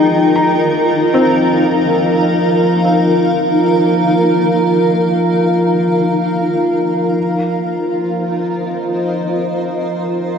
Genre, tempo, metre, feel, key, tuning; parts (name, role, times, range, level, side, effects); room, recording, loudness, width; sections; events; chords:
ambient; free time; F minor; A4 = 439 Hz
granular cloud pad; sustained chords; 0.0-10.4 s; Eb4 to Bb5; -14 LUFS; equal; built-in reverb
felt-muted upright piano; arpeggios; 0.0-7.2 s; Ab3 to Bb5; -20 LUFS; left 1 dB; ping-pong delay
analog drone; drone; 0.0-10.4 s; F3 to F4; -17 LUFS; equal; chorus
wet cathedral reverb, RT60 6.0 s; cassette tape; -12 LUFS; side -7 dB against mid
0.0-10.4 A section
fade-out 4.1-10.4
0.0 Fm9